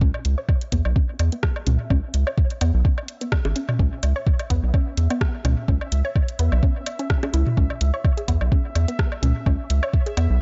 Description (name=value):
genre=minimal techno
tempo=127 BPM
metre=4/4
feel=swing 55% on 16ths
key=C# minor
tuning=A4 = 440 Hz
part: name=resonant blip pluck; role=riff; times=0.0-10.2 s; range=B3 to C#5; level=-33 LUFS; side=equal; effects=chorus, sidechain pumping, analog delay
part: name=rubbery square bass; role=bass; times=0.0-10.4 s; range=G#1 to E2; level=-22 LUFS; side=equal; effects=sidechain pumping
part: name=electronic kick drum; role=drums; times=0.0-10.0 s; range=none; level=-22 LUFS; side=equal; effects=none
part: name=bubbling stepped-filter texture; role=texture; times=0.4-10.4 s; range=E5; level=-42 LUFS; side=equal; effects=chorus, built-in reverb, sidechain pumping
part: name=electronic woodblock, toms and bongos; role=percussion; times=0.1-10.3 s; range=none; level=-32 LUFS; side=equal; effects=overdrive, dub echo
part: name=garage drum kit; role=drums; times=0.2-10.3 s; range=hi-hat, rim click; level=-33 LUFS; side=equal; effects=none
room=little or no reverb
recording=echo-heavy mix, nothing above 7.6 kHz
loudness=-22 LUFS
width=mono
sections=0.0-10.4 A section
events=none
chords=0.0 C#m